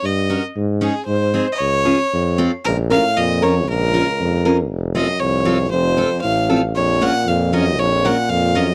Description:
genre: alpine folk, alpine dance band.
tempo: 116 BPM.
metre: 2/4.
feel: straight.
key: Bb harmonic minor.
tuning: A4 = 439 Hz.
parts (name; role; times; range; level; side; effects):
bright fiddle; melody; 0.0-8.7 s; Ab4 to Gb5; -22 LUFS; equal; none.
clear tuba; bass; 0.0-8.7 s; F1 to Ab2; -23 LUFS; equal; none.
picked steel-string acoustic guitar; accompaniment; 0.3-8.7 s; C4 to Bb4; -22 LUFS; equal; none.
warm euphonium; second line; 2.7-8.7 s; Db2 to Bb2; -25 LUFS; equal; none.
room: light reverb.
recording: dry, close 1970s-style studio recording.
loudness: -18 LUFS.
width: mono.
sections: 0.0-2.6 A section; 2.6-8.7 B section.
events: none.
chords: 0.0 Gb; 0.6 Absus4; 1.1 Ab; 1.6 Db; 2.1 F; 2.6 Bbm; 4.7 F; 6.7 Bbm.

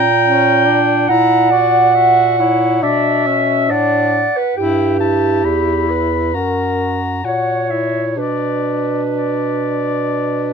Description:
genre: classical, lyrical piece for single-reed quartet.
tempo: 61-70 BPM.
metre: 4/4.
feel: rubato.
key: B minor.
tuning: A4 = 438 Hz.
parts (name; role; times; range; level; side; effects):
mellow soprano saxophone; melody; 0.0-10.5 s; C#5 to B5; -22 LUFS; left 7 dB; none.
dark clarinet; second line; 0.0-10.5 s; G4 to G5; -15 LUFS; right 3 dB; none.
mellow tenor saxophone; accompaniment; 0.0-10.5 s; C#4 to F#4; -20 LUFS; left 3 dB; none.
warm bass clarinet; bass; 0.0-10.5 s; E2 to B2; -21 LUFS; equal; none.
room: light reverb.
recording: none.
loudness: -13 LUFS.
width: side -6 dB against mid.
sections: 0.0-10.5 A section.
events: none.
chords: 0.0 A#m6; 1.1 F#7/A#; 2.8 Bm; 4.6 Em/G; 6.3 F#7; 8.2 Bm.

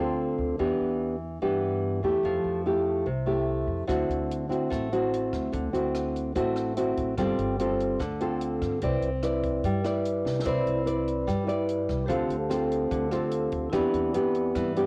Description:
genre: bossa nova.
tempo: 146 BPM.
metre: 4/4.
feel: straight.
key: C major.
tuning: A4 = 439 Hz.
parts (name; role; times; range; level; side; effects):
nylon-string guitar; accompaniment; 0.0-14.9 s; C3 to D5; -28 LUFS; equal; none.
upright bass; bass; 0.0-14.9 s; G1 to G2; -36 LUFS; equal; none.
compact cocktail drum kit; drums; 3.9-14.9 s; hi-hat, kick drum, rim click, snare drum; -42 LUFS; equal; none.
vibraphone with medium hard mallets; accompaniment; 10.4-14.9 s; C4 to B5; -36 LUFS; equal; none.
room: light reverb, studio ambience.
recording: home recording on cassette.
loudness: -28 LUFS.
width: mono.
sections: 0.0-10.5 A section; 10.5-14.9 A section.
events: drum fill 10.2.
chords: 0.0 Dm7; 0.6 Em7; 2.2 Fmaj9; 3.9 D9; 7.2 G9sus4; 8.8 Cmaj9; 12.1 G9sus4/D; 13.7 Cmaj9/E.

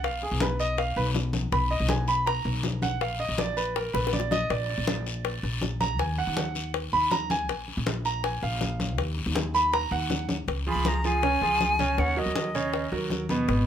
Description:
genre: latin, Cuban son and guajira.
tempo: 161 BPM.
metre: 4/4.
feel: straight.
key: Eb minor.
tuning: A4 = 440 Hz.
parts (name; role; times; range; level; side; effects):
bright concert grand piano; arpeggios; 0.0-13.6 s; Cb3 to B5; -28 LUFS; right 3 dB; none.
upright bass; bass; 0.0-13.7 s; Ab1 to Eb2; -30 LUFS; left 1 dB; none.
bongos; percussion; 0.0-13.7 s; none; -33 LUFS; left 9 dB; none.
congas; percussion; 0.0-13.7 s; none; -33 LUFS; left 1 dB; none.
guiro; percussion; 0.0-13.7 s; none; -37 LUFS; left 6 dB; none.
bright silver concert flute; melody; 10.7-12.9 s; Eb5 to Cb6; -26 LUFS; equal; none.
room: light reverb.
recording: minimal, uncompressed stereo recording.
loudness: -24 LUFS.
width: side -9 dB against mid.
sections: 0.0-10.5 A section; 10.5-13.7 B section.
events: grand piano solo 0.0-10.5; drum fill 3.9-4.5.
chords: 0.0 B6; 3.0 Bb; 6.0 Ebm; 7.5 Bb5; 9.0 Ebm; 10.5 Db; 12.0 Ebm7.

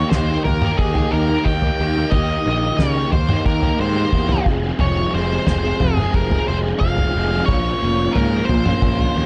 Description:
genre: psychedelic rock.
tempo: 90 BPM.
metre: 4/4.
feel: straight.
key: unclear.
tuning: A4 = 441 Hz.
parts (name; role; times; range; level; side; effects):
octave-fuzz lead guitar; melody; 0.0-9.3 s; Ab4 to G5; -26 LUFS; equal; distortion, slapback echo.
overdriven electric guitar; riff; 0.0-9.3 s; F2 to Ab4; -24 LUFS; equal; rotary speaker.
fuzz picked electric bass; bass; 0.0-9.3 s; F1 to Db3; -24 LUFS; equal; overdrive.
cloth-damped thuddy drum kit; drums; 0.1-9.1 s; kick drum, snare drum, toms; -23 LUFS; equal; none.
room: small room ambience.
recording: nothing above 10.5 kHz.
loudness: -18 LUFS.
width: mono.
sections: 0.0-9.3 A section.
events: none.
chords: 0.0 Eb; 4.5 Fm; 7.5 Bbm.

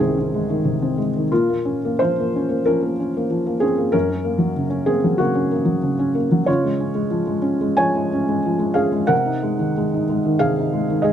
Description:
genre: neoclassical minimalist piano.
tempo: 92 BPM.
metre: 4/4.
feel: rubato.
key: Db major.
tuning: A4 = 440 Hz.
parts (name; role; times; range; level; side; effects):
felt-muted upright piano; solo; 0.0-11.1 s; C2 to Ab5; -17 LUFS; equal; none.
room: little or no reverb.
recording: close, detailed microphones.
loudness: -18 LUFS.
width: side -9 dB against mid.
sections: 0.0-11.1 A section.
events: none.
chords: 0.0 Ab/C; 1.3 Bbm; 3.9 Gb; 6.5 Db; 9.1 Ab/C.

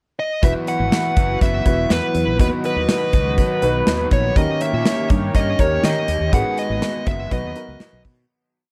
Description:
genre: 1980s-style pop.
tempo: 122 BPM.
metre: 4/4.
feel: straight.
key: B major.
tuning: A4 = 440 Hz.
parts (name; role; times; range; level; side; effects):
dark smooth lead guitar; melody; 0.2-8.0 s; B4 to F#5; -25 LUFS; equal; overdrive.
crunchy overdriven guitar; accompaniment; 0.4-8.7 s; G#2 to E4; -34 LUFS; equal; none.
warm concert grand piano; accompaniment; 0.4-8.3 s; B3 to B4; -29 LUFS; equal; none.
lush unison pad; sustained chords; 0.4-8.3 s; D#3 to G4; -29 LUFS; equal; chorus.
clear horn section; stabs; 0.4-8.0 s; D#4 to D#5; -34 LUFS; equal; none.
fretless electric bass; bass; 0.4-8.2 s; E1 to D#3; -26 LUFS; equal; ensemble chorus.
modern studio drum kit; drums; 0.4-8.2 s; hi-hat, kick drum, snare drum; -21 LUFS; equal; none.
room: moderate small room reverb, RT60 0.5 s.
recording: none.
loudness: -19 LUFS.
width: mono.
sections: 0.0-0.4 pickup bar; 0.4-8.3 chorus.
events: fade-out 6.3-8.3.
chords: 0.4 Esus2; 2.4 B; 4.4 D#7; 6.3 G#m7; 7.3 B.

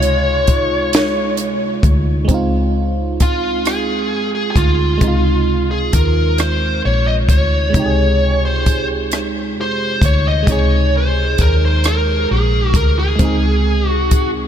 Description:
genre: slow six-eight R&B.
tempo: 44 BPM (dotted quarters).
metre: 6/8.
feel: straight.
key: Db major.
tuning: A4 = 440 Hz.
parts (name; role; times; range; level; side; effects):
smooth overdriven lead guitar; melody; 0.0-14.3 s; F4 to Eb5; -18 LUFS; equal; ping-pong delay.
FM electric piano; accompaniment; 0.0-14.5 s; C3 to Ab4; -21 LUFS; right 3 dB; chorus.
dark horn section; stabs; 0.0-1.8 s; Ab3 to Db5; -28 LUFS; left 2 dB; ping-pong delay.
vintage muted fingered electric bass; bass; 0.0-14.5 s; Bb1 to F2; -17 LUFS; equal; none.
compact cocktail drum kit; drums; 0.0-14.3 s; hi-hat, kick drum, rim click, snare drum; -17 LUFS; equal; none.
room: light reverb, small room ambience.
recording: none.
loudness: -13 LUFS.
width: side -9 dB against mid.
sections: 0.0-2.3 A section; 2.3-14.5 B section.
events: lead electric guitar solo 2.3-14.5.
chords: 0.0 Dbmaj9.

